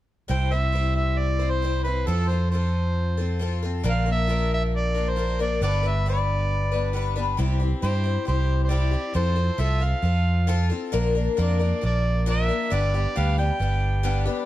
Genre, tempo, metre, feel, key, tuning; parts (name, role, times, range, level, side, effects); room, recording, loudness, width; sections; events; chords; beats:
folk rock and heartland rock; 135 BPM; 4/4; straight; C major; A4 = 439 Hz
mellow harmonica; melody; 0.3-14.2 s; A4 to G5; -28 LUFS; right 1 dB; slapback echo
picked twelve-string acoustic guitar; accompaniment; 0.3-14.5 s; G2 to C5; -28 LUFS; left 6 dB
fingered electric bass; bass; 0.3-14.3 s; G1 to G2; -23 LUFS; right 1 dB
little or no reverb; dark, warm production; -21 LUFS; side -14 dB against mid
0.3-7.4 A section; 7.4-14.5 B section
0.3 C; 2.1 F; 3.9 Bb; 5.6 G; 7.4 C; 9.2 F; 10.9 Bb; 12.7 G
| 0.30 0.74 1.19 1.63 | 2.08 2.52 2.96 3.41 | 3.85 4.29 4.74 5.18 | 5.62 6.07 6.51 6.95 | 7.39 7.84 8.28 8.72 | 9.17 9.61 10.05 10.49 | 10.94 11.38 11.82 12.27 | 12.71 13.15 13.60 14.04